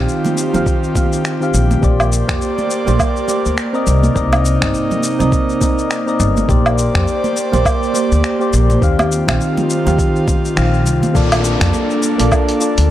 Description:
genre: sunset chillout.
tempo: 103 BPM.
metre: 4/4.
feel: swing 58% on 16ths.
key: Bb major.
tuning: A4 = 440 Hz.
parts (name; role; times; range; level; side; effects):
soft electric-piano-like synth keys; accompaniment; 0.0-12.9 s; Eb3 to F5; -18 LUFS; moving between left 3 dB and right 4 dB; chorus, auto-pan, analog delay.
airy breathy pad; sustained chords; 0.0-12.9 s; C3 to D5; -20 LUFS; equal; chorus.
upright bass; bass; 0.0-12.9 s; G1 to F2; -16 LUFS; equal; none.
dusty soul sampler-style drum kit; drums; 0.1-12.9 s; finger snaps, hi-hat, shaker, woodblock; -21 LUFS; equal; small room reverb.
congas; percussion; 0.2-11.1 s; none; -24 LUFS; right 3 dB; none.
electronic kick drum; drums; 0.7-12.5 s; none; -18 LUFS; equal; small room reverb.
downlifter; sound effects; 11.2-12.9 s; none; -25 LUFS; left 1 dB; none.
room: light reverb.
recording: dry, gritty hardware recording.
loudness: -13 LUFS.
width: side -13 dB against mid.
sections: 0.0-11.2 A section; 11.2-12.9 B section.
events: band accent 10.6.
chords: 0.0 Eb69; 1.8 Bb69; 3.9 Cm9; 6.5 Bb69; 8.8 Eb69; 11.2 Bbmaj7.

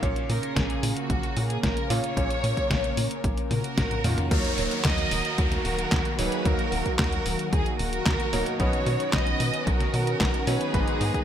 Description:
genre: italo disco.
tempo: 112 BPM.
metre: 4/4.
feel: straight.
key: Eb minor.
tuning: A4 = 440 Hz.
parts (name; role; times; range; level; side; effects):
warm analog pad; sustained chords; 0.0-11.2 s; Db3 to Bb4; -33 LUFS; right 1 dB; chorus, phaser.
clear electric grand piano; stabs; 0.0-11.2 s; Ab2 to F5; -33 LUFS; equal; wide subtle chorus.
tight sequencer bass; bass; 0.0-11.1 s; Eb1 to B2; -29 LUFS; equal; none.
detuned 8-bit digital drum machine; drums; 0.0-11.2 s; crash cymbal, handclaps, hi-hat, snare drum, toms; -30 LUFS; equal; overdrive.
electronic kick drum; drums; 0.0-11.2 s; none; -28 LUFS; equal; overdrive.
warm studio violin section; melody; 0.3-11.2 s; Eb4 to Eb5; -30 LUFS; right 1 dB; ping-pong delay.
downlifter; sound effects; 4.3-8.6 s; none; -35 LUFS; equal; none.
room: light reverb, digital ambience.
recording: bright 1980s-style digital production.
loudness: -23 LUFS.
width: side -9 dB against mid.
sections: 0.0-4.3 A section; 4.3-11.2 B section.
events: drum fill 3.5-4.3.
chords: 0.0 Bbm; 4.3 Ebm; 8.6 Badd9; 10.7 Abm.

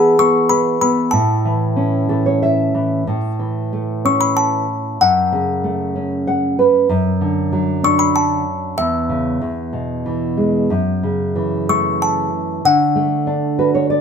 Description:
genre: children's music, lullaby.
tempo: 95 BPM.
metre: 3/4.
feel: rubato.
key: A major.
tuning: A4 = 439 Hz.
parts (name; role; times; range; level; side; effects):
music box; melody; 0.0-14.0 s; E5 to C#6; -17 LUFS; left 4 dB; none.
nylon-string guitar; accompaniment; 0.0-14.0 s; E2 to F#5; -16 LUFS; right 2 dB; none.
room: moderate stone room reverb, RT60 1.1 s.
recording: band playing live in one room.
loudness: -15 LUFS.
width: side -6 dB against mid.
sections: 0.0-3.1 A section; 3.1-14.0 B section.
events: nylon-string guitar fill 1.8-3.1, 6.0-6.9, 13.3-14.0.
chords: 0.0 E; 1.1 A; 5.0 F#m; 6.9 Bm7/F# (rootless); 8.8 C#m/E; 9.4 E; 10.7 F#m7; 12.6 D.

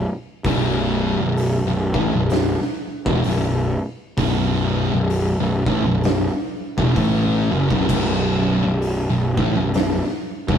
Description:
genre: stoner and doom metal.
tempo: 65 BPM.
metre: 4/4.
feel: swing 60% on 8ths.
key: unclear.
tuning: A4 = 440 Hz.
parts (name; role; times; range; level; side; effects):
fuzz picked electric bass; bass; 0.0-10.6 s; B0 to A1; -21 LUFS; equal; overdrive.
oversized low-tuned drum kit; drums; 0.4-10.6 s; crash cymbal, hi-hat, kick drum, snare drum; -24 LUFS; equal; none.
thick fuzz guitar; riff; 0.5-10.6 s; B1 to A3; -24 LUFS; left 6 dB; distortion.
thick fuzz guitar; riff; 0.5-10.6 s; B1 to A3; -24 LUFS; right 6 dB; distortion.
room: light reverb.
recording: rough rehearsal-room recording.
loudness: -18 LUFS.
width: side -8 dB against mid.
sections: 0.0-10.6 A section.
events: none.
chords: 0.0 B5.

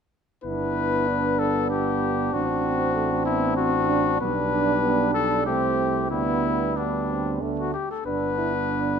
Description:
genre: classical, brass quintet.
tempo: 95 BPM.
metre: 3/4.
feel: rubato.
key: G major.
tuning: A4 = 437 Hz.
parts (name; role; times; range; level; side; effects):
warm trumpet; melody; 0.4-9.0 s; D4 to B4; -25 LUFS; left 7 dB; none.
dark trumpet; second line; 0.4-9.0 s; B3 to D4; -29 LUFS; right 8 dB; none.
clear French horn; accompaniment; 0.4-9.0 s; G3 to C4; -29 LUFS; left 2 dB; none.
clear trombone; accompaniment; 0.4-9.0 s; G3 to E4; -30 LUFS; right 6 dB; none.
dark tuba; bass; 0.4-9.0 s; G1 to D2; -30 LUFS; right 5 dB; none.
room: moderate recital hall reverb, RT60 1.5 s.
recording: none.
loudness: -21 LUFS.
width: side -7 dB against mid.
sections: 0.4-9.0 A section.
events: none.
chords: 0.4 G; 2.3 D7/A; 4.2 G/B; 5.5 Am7/C; 6.1 G/D; 7.4 D5; 8.1 G.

